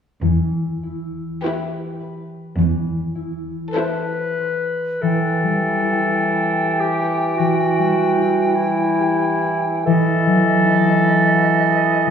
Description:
classical, slow romantic movement for symphony orchestra; 44-56 BPM; 4/4; rubato; E minor; A4 = 440 Hz
concert harp; arpeggios; 0.2-12.1 s; E3 to C5; -21 LUFS; left 2 dB
rich studio cello section; bass; 0.2-3.5 s; E2; -22 LUFS; right 2 dB
rich symphonic violin section; melody; 1.4-4.7 s; B4 to C5; -32 LUFS; left 3 dB
clear symphonic violin section; second line; 1.4-4.7 s; G4 to A4; -29 LUFS; left 3 dB
clear symphonic viola section; accompaniment; 1.4-4.7 s; E4; -28 LUFS; left 1 dB
clear clarinet; second line; 3.7-12.1 s; E4 to B4; -20 LUFS; right 1 dB
silver concert flute; second line; 5.0-12.1 s; D#5 to G5; -25 LUFS; left 1 dB
warm bassoon; accompaniment; 5.0-12.1 s; E3; -20 LUFS; right 1 dB
wet scoring stage reverb, RT60 1.8 s; heard from further back in the room; -16 LUFS; side -7 dB against mid
0.2-5.0 A section; 5.0-12.1 B section
0.2 Em; 2.6 Am/E; 5.0 Em; 9.9 B7/E
| 0.22 1.42 2.57 3.74 | 5.02 6.22 7.38 8.56 | 9.86 10.99 12.06

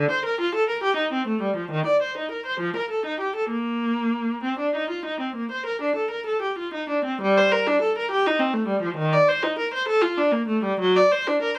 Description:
classical, baroque-style suite movement for unaccompanied viola; 63-70 BPM (dotted quarters); 12/8; rubato; Bb major, G minor from 7.2 s; A4 = 440 Hz
rich viola; solo; 0.0-11.5 s; D3 to D5; -24 LUFS; equal
light reverb; close, detailed microphones, faint mains hum; -24 LUFS; mono
0.0-7.2 A section; 7.2-11.6 A section
0.83 1.71 2.60 | 3.51 4.44 5.36 6.27 | 7.20 8.10 8.97 9.86 | 10.78

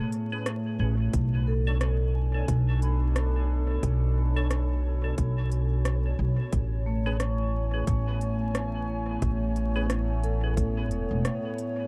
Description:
ambient dub; 89 BPM; 4/4; swing 59% on 16ths; A4 = 445 Hz
warbly tape-like pad; sustained chords; 0.0-11.9 s; A2 to G#5; -36 LUFS; equal; chorus, built-in reverb
vibraphone with medium hard mallets; arpeggios; 0.0-11.9 s; A3 to C#6; -39 LUFS; equal; dub echo
organic electronic drum kit; drums; 0.1-11.7 s; hi-hat, rim click; -37 LUFS; equal; overdrive, dub echo
percussive tonewheel organ; stabs; 0.3-10.5 s; C#4 to C#5; -42 LUFS; equal; chorus vibrato, slow rotary speaker, dub echo
upright bass; bass; 0.8-11.2 s; E1 to B1; -28 LUFS; equal
electronic kick drum; drums; 1.1-10.7 s; -31 LUFS; equal; overdrive
little or no reverb; dark, warm production, vinyl crackle; -27 LUFS; mono
0.0-11.9 A section
0.0 Amaj9; 1.1 Bm7; 6.5 Amaj9
0.46 | 1.14 1.81 2.48 3.16 | 3.83 4.50 5.18 5.85 | 6.53 7.20 7.88 8.55 | 9.22 9.90 10.57 11.25

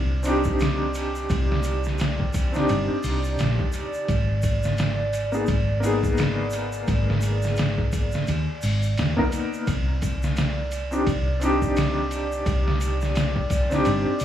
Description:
trip hop; 86 BPM; 4/4; swing 58% on 16ths; C minor; A4 = 440 Hz
warbly tape-like pad; sustained chords; 0.0-14.2 s; D5; -32 LUFS; right 1 dB; chorus, built-in reverb
hollow-body short-scale fingered electric bass; bass; 0.0-14.2 s; G1 to Eb2; -26 LUFS; equal
felt-muted upright piano; accompaniment; 0.2-14.2 s; Bb3 to Bb4; -26 LUFS; left 1 dB; tremolo, vintage 12-bit sampler grit, tape echo
tube shaker; percussion; 0.2-14.2 s; -44 LUFS; equal
trip hop sampler-style drum kit; drums; 0.3-14.2 s; hi-hat, kick drum, ride cymbal, snare drum; -26 LUFS; equal; overdrive
light reverb; vinyl crackle, studio ambience; -21 LUFS; side -10 dB against mid
0.0-14.2 A section
0.0 Cmadd9; 4.1 Abmadd9; 9.7 Cmadd9
0.60 | 1.30 2.00 2.69 3.39 | 4.09 4.79 5.49 6.18 | 6.88 7.58 8.28 8.97 | 9.67 10.37 11.07 11.76 | 12.46 13.16 13.86

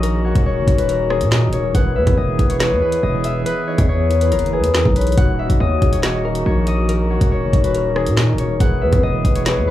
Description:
hip hop, drill; 140 BPM; 4/4; half-time; Eb phrygian; A4 = 441 Hz
concert harp; melody; 0.0-9.7 s; Ab4 to Gb5; -24 LUFS; left 2 dB; low-pass filter, slapback echo
mellow tine electric piano; accompaniment; 0.0-9.7 s; Eb3 to Eb5; -24 LUFS; right 1 dB; medium stereo tremolo, low-pass filter
warm woodwind section; sustained chords; 0.0-9.7 s; Eb3 to G#4; -29 LUFS; equal
distorted 808-style bass; bass; 0.0-9.7 s; Eb1 to Bb2; -19 LUFS; equal; distortion
drill drum kit; drums; 0.0-9.6 s; handclaps, hi-hat, kick drum, rim click, snare drum; -18 LUFS; equal
soft octave-layered synth lead; second line; 0.2-9.7 s; Bb4 to Gb5; -22 LUFS; left 6 dB; chorus, tremolo, slapback echo
light reverb; small room reverb; -14 LUFS; side -13 dB against mid
0.0-9.7 A section
0.0 Ebm7; 1.7 E; 5.2 Ebm7; 8.6 E
| 0.03 0.46 0.89 1.32 | 1.75 2.17 2.60 3.03 | 3.46 3.89 4.32 4.75 | 5.17 5.60 6.03 6.46 | 6.89 7.32 7.75 8.18 | 8.60 9.03 9.46

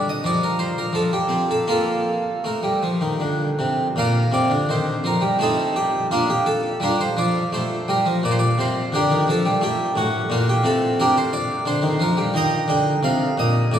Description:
classical, baroque-style suite movement for harpsichord; 78-89 BPM; 3/4; rubato; Bb major; A4 = 439 Hz
harpsichord; solo; 0.0-13.8 s; A2 to Bb5; -18 LUFS; equal
wet cathedral reverb, RT60 5.3 s; in a vast, echoing space, small room ambience; -18 LUFS; side -9 dB against mid
0.0-4.0 A section; 4.0-13.8 B section
0.2 N.C.; 0.9 F5; 1.7 Bb; 5.4 Adim; 6.1 Bb; 8.2 Gm/Bb; 9.6 N.C.; 10.3 Gm/Bb; 12.3 Eb
0.24 0.93 | 1.68 2.44 3.21 | 3.96 4.68 5.39 | 6.10 6.80 7.52 | 8.23 8.92 9.61 | 10.29 10.97 11.65 | 12.34 13.03 13.72

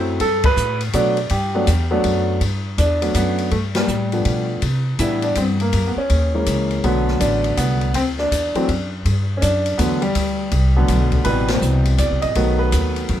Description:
jazz piano trio; 163 BPM; 3/4; swing 64% on 8ths; G major; A4 = 440 Hz
warm grand piano; melody; 0.0-13.2 s; B2 to Eb5; -20 LUFS; equal
upright bass; bass; 0.0-13.2 s; A1 to C3; -20 LUFS; equal
open jazz drum kit; drums; 0.2-13.2 s; hi-hat, kick drum, ride cymbal, snare drum; -26 LUFS; left 2 dB
light reverb; -16 LUFS; side -11 dB against mid
0.0-2.4 A section; 2.4-11.3 B section; 11.3-13.2 A section
band accent 0.4, 3.7, 11.4
0.2 Gmaj9; 3.5 G7; 4.6 Cmaj7; 5.7 F#7; 6.8 Bm7; 7.9 D; 9.0 Gmaj7; 11.3 Am7; 12.4 B7
| 0.20 0.57 0.94 | 1.31 1.68 2.04 | 2.41 2.78 3.15 | 3.52 3.89 4.25 | 4.62 4.99 5.36 | 5.73 6.10 6.47 | 6.84 7.20 7.57 | 7.94 8.31 8.68 | 9.05 9.41 9.78 | 10.15 10.52 10.89 | 11.26 11.62 11.99 | 12.36 12.73 13.10

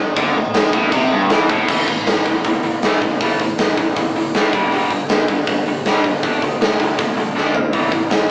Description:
punk rock; 159 BPM; 4/4; straight; A4 = 437 Hz
overdriven electric guitar; riff; 0.2-1.7 s; G2 to E3; -24 LUFS; equal
tight distorted guitar; riff; 0.2-8.3 s; G2 to D4; -22 LUFS; equal; distortion
growling picked electric bass; bass; 0.2-8.3 s; F#1 to G2; -31 LUFS; equal; overdrive
big rock drum kit; drums; 0.2-8.2 s; crash cymbal, hi-hat, kick drum, snare drum, toms; -19 LUFS; equal
light reverb; rough rehearsal-room recording, warm saturation, small speaker sound; -17 LUFS; mono
0.0-1.7 A section; 1.7-8.3 B section
drum fill 7.4-7.7
0.0 Am; 1.7 A5; 4.5 G5; 6.2 D5; 7.7 A5
| 0.18 0.56 0.94 1.32 | 1.70 2.07 2.45 2.83 | 3.21 3.59 3.96 4.34 | 4.72 5.10 5.47 5.85 | 6.23 6.61 6.98 7.36 | 7.74 8.11

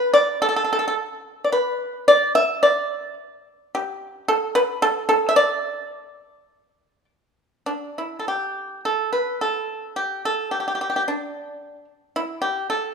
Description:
chinese traditional, Chinese solo plucked strings; 54 BPM; 2/4; rubato; D zhi mode; A4 = 437 Hz
pipa; solo; 0.0-12.9 s; D4 to E5; -19 LUFS; equal
moderate recital hall reverb, RT60 1.6 s; minimal, uncompressed stereo recording; -20 LUFS; side -6 dB against mid
0.0-7.7 A section; 7.7-12.9 B section
| 0.98 2.08 | 3.17 4.26 | 5.36 6.50 | 7.67 8.83 | 9.95 11.05 | 12.14

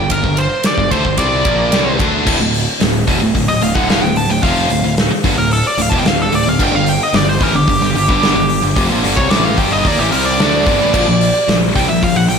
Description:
heavy metal; 111 BPM; 4/4; straight; D minor; A4 = 440 Hz
nasal lead guitar with a parked wah; melody; 0.0-12.4 s; G4 to A5; -17 LUFS; equal; overdrive
high-gain distorted guitar; riff; 0.0-12.4 s; D2 to D4; -20 LUFS; left 10 dB; distortion, slapback echo
high-gain distorted guitar; riff; 0.0-12.4 s; D2 to D4; -20 LUFS; right 9 dB; distortion, slapback echo
fuzz picked electric bass; bass; 0.0-12.4 s; D1 to Eb2; -21 LUFS; equal; overdrive
big rock drum kit; drums; 0.1-12.4 s; crash cymbal, hi-hat, kick drum, ride cymbal, snare drum; -17 LUFS; equal
distorted electric guitar; riff; 2.3-12.4 s; D2 to D4; -22 LUFS; right 1 dB; distortion
moderate lush hall reverb, RT60 2.2 s; big arena sound; -11 LUFS; side -6 dB against mid
0.0-2.3 A section; 2.3-12.4 B section
lead electric guitar solo 2.3-12.4
0.0 G5; 2.3 Dm; 6.6 G5; 10.9 Bb5
| 0.10 0.65 1.19 1.73 | 2.27 2.81 3.35 3.89 | 4.43 4.97 5.51 6.06 | 6.60 7.14 7.68 8.23 | 8.77 9.31 9.86 10.40 | 10.94 11.48 12.02

